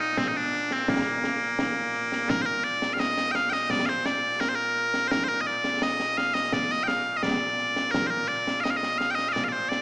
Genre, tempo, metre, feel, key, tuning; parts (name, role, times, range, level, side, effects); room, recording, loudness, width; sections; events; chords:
scottish traditional, Scottish pipe music; 85 BPM; 2/4; straight; Bb major; A4 = 441 Hz
loud bright bagpipes; melody; 0.0-9.8 s; Bb2 to G5; -24 LUFS; equal
concert snare drum and concert bass drum; drums; 0.2-9.8 s; -30 LUFS; equal
moderate scoring stage reverb, RT60 1.8 s; small speaker sound; -23 LUFS; side -29 dB against mid
0.0-2.3 A section; 2.3-9.8 B section